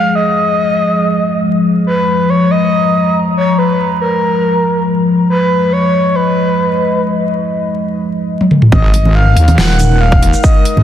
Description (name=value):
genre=deep dubstep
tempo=140 BPM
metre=4/4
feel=half-time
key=G# dorian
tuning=A4 = 444 Hz
part: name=breathy flute-like synth lead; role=melody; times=0.0-10.8 s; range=A#4 to F#5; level=-15 LUFS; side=equal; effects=chorus, vintage 12-bit sampler grit, dub echo
part: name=dark analog pad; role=sustained chords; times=0.0-10.8 s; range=E#3 to A#5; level=-14 LUFS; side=left 1 dB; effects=chorus, phaser
part: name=dubstep drum kit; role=drums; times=8.4-10.7 s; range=hi-hat, shaker, snare drum, toms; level=-12 LUFS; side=equal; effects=overdrive, low-pass filter on toms, low-pass filter on hats, low-pass filter on snare, low-pass filter on perc, low-pass filter on room
part: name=wobble bass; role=bass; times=8.7-10.8 s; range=D#1 to G#2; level=-9 LUFS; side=equal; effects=chorus
part: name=electronic kick drum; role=drums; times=8.7-10.5 s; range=none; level=-10 LUFS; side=equal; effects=overdrive
part: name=congas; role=percussion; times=8.7-10.8 s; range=none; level=-19 LUFS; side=right 2 dB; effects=none
room=light reverb, digital ambience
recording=dense, heavily limited modern master, vinyl crackle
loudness=-10 LUFS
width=side -10 dB against mid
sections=0.0-8.7 A section; 8.7-10.8 B section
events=drum fill 8.4-8.7; drop 8.7-10.8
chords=0.0 G#madd9; 8.7 G#sus2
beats=| 0.15 0.58 1.01 1.44 | 1.87 2.29 2.72 3.15 | 3.58 4.01 4.44 4.87 | 5.29 5.72 6.15 6.58 | 7.01 7.44 7.87 8.29 | 8.72 9.15 9.58 10.01 | 10.44